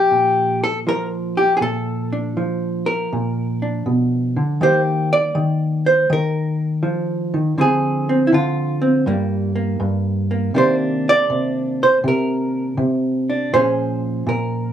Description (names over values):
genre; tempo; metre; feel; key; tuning
solo jazz; 80 BPM; 4/4; swing 67% on 8ths; Bb major, Eb major from 4.6 s; A4 = 439 Hz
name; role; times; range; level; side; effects
hollow-body jazz guitar; solo; 0.0-14.7 s; G2 to D5; -16 LUFS; equal; none
room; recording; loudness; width
moderate studio reverb, RT60 0.7 s; small room ambience; -17 LUFS; side -9 dB against mid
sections
0.0-4.6 A section; 4.6-14.7 B section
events
none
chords
0.0 Bbmaj7; 3.1 Bb; 4.6 Ebmaj9; 7.6 Dm7b5; 9.1 Gm7; 10.6 Cm9; 13.5 Bbm7